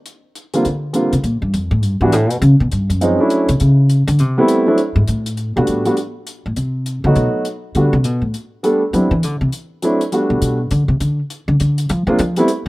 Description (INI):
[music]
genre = jazz, small-group swing and bop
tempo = 203 BPM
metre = 4/4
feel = swing 62% on 8ths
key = G major from 5.4 s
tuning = A4 = 437 Hz
[part]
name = hi-hat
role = drums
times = 0.1-12.6 s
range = none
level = -32 LUFS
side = left 3 dB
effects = none
[part]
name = warm upright piano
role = accompaniment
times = 0.5-12.5 s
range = D3 to A4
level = -16 LUFS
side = right 1 dB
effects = none
[part]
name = upright bass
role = bass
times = 0.7-12.7 s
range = F2 to F#3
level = -15 LUFS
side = equal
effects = none
[sound]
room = light reverb, studio reverb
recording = rough home demo mix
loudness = -14 LUFS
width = side -20 dB against mid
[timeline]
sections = 0.0-5.4 A section; 5.4-12.7 A section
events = upright bass solo 0.0-12.7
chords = 0.1 F5; 0.6 Bb69; 1.8 Em7; 2.4 Gmaj7#11; 3.0 Dmaj9; 4.2 Am7; 4.8 N.C.; 5.4 Gmaj9; 6.6 F#dim; 7.2 B7; 7.7 A9sus4; 8.9 Cmaj9#11; 9.5 D9; 10.1 Gmaj9; 11.3 N.C.; 11.9 Bb9